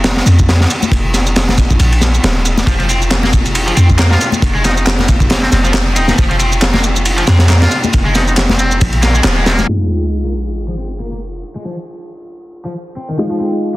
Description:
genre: breakbeat, breaks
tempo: 137 BPM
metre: 4/4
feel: swing 56% on 16ths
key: F minor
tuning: A4 = 440 Hz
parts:
  - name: warm 808-style bass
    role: bass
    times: 0.0-9.6 s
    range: Eb1 to F2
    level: -13 LUFS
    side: equal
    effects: none
  - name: crunchy breakbeat drum kit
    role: drums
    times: 0.0-9.7 s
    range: kick drum, ride cymbal, snare drum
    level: -14 LUFS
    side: equal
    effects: none
  - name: electronic shaker and handclaps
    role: drums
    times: 0.0-9.7 s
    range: none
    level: -22 LUFS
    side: right 1 dB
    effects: low-pass filter on perc, low-pass filter on snare
  - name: congas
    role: percussion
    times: 0.3-9.7 s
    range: none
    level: -22 LUFS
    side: left 5 dB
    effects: none
  - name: cranked stack guitar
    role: riff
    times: 2.7-13.8 s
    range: Eb3 to C4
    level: -21 LUFS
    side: equal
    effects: overdrive, tube saturation, low-pass filter
  - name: trumpet with metal mute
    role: melody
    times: 4.1-9.7 s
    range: Bb3 to F4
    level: -21 LUFS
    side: equal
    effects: old record sound, digital delay
  - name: dark baby grand piano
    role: stabs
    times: 9.7-13.8 s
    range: Ab3 to F4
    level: -19 LUFS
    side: equal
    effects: vintage 12-bit sampler grit, low-pass filter, digital delay
  - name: sub drop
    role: sound effects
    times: 9.7-11.4 s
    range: none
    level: -19 LUFS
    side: equal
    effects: none
room: light reverb, small room ambience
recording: dense, heavily limited modern master, low-pass filter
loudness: -10 LUFS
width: side -18 dB against mid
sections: 0.0-9.7 A section; 9.7-13.8 B section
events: impact 9.7-11.4; filter sweep on overdriven electric guitar 9.7-13.8; filter sweep 9.7-13.8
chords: 0.0 N.C.; 9.7 Fm7

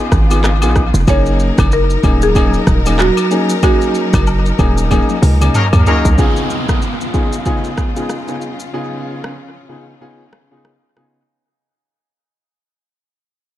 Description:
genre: afrobeats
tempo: 94 BPM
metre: 4/4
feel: swing 58% on 16ths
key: unclear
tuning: A4 = 440 Hz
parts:
  - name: warm studio string section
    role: sustained chords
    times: 0.0-11.3 s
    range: C#3 to A#4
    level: -22 LUFS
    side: left 2 dB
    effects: none
  - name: hard-hitting 808-style bass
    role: bass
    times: 0.1-6.2 s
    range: D#1 to D#2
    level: -14 LUFS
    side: equal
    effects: none
  - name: afro-pop drum kit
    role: drums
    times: 0.1-11.1 s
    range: handclaps, hi-hat, kick drum, rim click, shaker, toms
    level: -16 LUFS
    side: equal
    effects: none
  - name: clear concert grand piano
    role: accompaniment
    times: 0.3-11.2 s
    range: C#3 to G#4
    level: -20 LUFS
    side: left 1 dB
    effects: dub echo
  - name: agogo bells and woodblock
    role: percussion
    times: 0.3-5.9 s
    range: none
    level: -26 LUFS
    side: left 5 dB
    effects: dub echo
  - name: buzzing marimba with medium mallets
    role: melody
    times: 1.1-5.8 s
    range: F#4 to C#5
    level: -18 LUFS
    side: right 2 dB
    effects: dub echo
  - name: clear horn section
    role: second line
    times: 5.5-6.1 s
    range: F#3 to A#4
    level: -21 LUFS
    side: left 3 dB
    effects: dub echo
  - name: downlifter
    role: sound effects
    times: 6.2-11.3 s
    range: none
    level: -25 LUFS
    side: equal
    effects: none
room: light reverb, small room ambience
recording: echo-heavy mix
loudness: -11 LUFS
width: side -13 dB against mid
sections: 0.0-6.2 A section; 6.2-11.3 B section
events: band accent 3.6-6.2; drum fill 4.9-6.2; fade-out 6.2-11.3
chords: 0.0 C#7; 1.1 F#6; 6.2 C#7

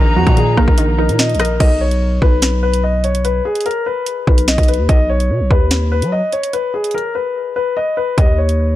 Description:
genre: hip hop, drill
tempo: 146 BPM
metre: 4/4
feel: half-time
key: unclear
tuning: A4 = 440 Hz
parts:
  - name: dark baby grand piano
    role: melody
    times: 0.0-8.8 s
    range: Gb4 to Eb5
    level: -18 LUFS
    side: left 3 dB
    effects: ping-pong delay
  - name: silver concert flute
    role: second line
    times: 0.0-0.7 s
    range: Bb5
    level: -24 LUFS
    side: left 4 dB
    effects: ping-pong delay
  - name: warbly dusty pluck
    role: accompaniment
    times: 0.0-1.6 s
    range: Eb3 to Eb5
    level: -20 LUFS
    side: right 4 dB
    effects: chorus
  - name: rich symphonic string section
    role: sustained chords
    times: 0.0-1.6 s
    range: F3 to Eb4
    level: -28 LUFS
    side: right 1 dB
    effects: none
  - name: growling 808-style bass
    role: bass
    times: 0.0-8.8 s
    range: Bb1 to F#3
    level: -16 LUFS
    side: equal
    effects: none
  - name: drill drum kit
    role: drums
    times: 0.3-8.6 s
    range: crash cymbal, hi-hat, kick drum, rim click, snare drum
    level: -15 LUFS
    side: equal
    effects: none
room: small room ambience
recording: dark, warm production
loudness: -13 LUFS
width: side -14 dB against mid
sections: 0.0-1.6 A section; 1.6-8.8 B section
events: drums muted 7.4-8.2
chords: 0.0 Bbsus4; 1.6 N.C.

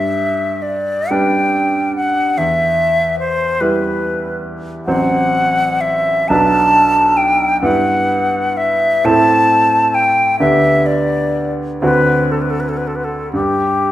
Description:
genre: classical, romantic duo for flute and grand piano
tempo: 39-50 BPM (dotted quarters)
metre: 6/8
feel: rubato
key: G major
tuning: A4 = 440 Hz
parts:
  - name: bright silver concert flute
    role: melody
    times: 0.0-13.9 s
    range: G4 to A5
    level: -14 LUFS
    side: left 1 dB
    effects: none
  - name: bright grand piano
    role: accompaniment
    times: 0.0-13.9 s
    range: A1 to C5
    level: -18 LUFS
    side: right 1 dB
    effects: none
room: wet recital hall reverb, RT60 1.6 s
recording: none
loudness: -12 LUFS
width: side -13 dB against mid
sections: 0.0-13.9 A section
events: none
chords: 0.0 G; 2.4 Em; 4.9 F#dim/A; 6.3 Bm; 7.6 Em/G; 9.0 Am; 10.4 G/D; 11.8 D7; 13.3 N.C.

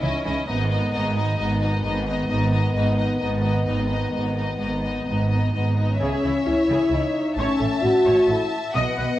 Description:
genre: cinematic, epic orchestral film score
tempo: 131 BPM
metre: 3/4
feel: straight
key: unclear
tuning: A4 = 440 Hz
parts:
  - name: rich studio violin section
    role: melody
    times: 0.0-9.2 s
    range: D#5 to A5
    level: -31 LUFS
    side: left 3 dB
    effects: none
  - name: rich studio violin section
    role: second line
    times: 0.0-9.2 s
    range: D#4 to E5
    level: -30 LUFS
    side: left 2 dB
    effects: none
  - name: warm symphonic viola section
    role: accompaniment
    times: 0.0-9.1 s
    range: B3 to D#5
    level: -31 LUFS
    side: right 1 dB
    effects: none
  - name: mellow French horn section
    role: sustained chords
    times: 0.0-9.2 s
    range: D#3 to F#4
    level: -24 LUFS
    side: left 1 dB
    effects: none
  - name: clear symphonic double bass section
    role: bass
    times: 0.0-9.1 s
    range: G#1 to C#2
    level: -26 LUFS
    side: right 2 dB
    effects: none
  - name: rich symphonic cello section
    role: bass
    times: 0.0-9.1 s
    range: G#2 to C#3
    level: -27 LUFS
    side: right 1 dB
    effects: none
room: wet recital hall reverb, RT60 1.6 s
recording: worn, warbling old tape, cassette tape, warbly pitch drift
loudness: -20 LUFS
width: side -14 dB against mid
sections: 0.0-6.0 A section; 6.0-9.2 B section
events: build-up 0.0-6.0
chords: 0.5 G#m; 6.0 C#m; 7.4 A

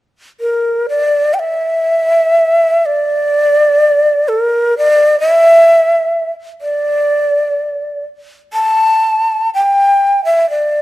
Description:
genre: japanese traditional, Japanese chamber music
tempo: 59-66 BPM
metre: 2/4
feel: rubato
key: unclear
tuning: A4 = 442 Hz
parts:
  - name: breathy hollow shakuhachi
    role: solo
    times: 0.4-10.8 s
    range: Bb4 to A5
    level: -10 LUFS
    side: equal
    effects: none
room: light reverb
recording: close, detailed microphones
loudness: -10 LUFS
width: side -16 dB against mid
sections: 0.9-10.8 A section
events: none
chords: none

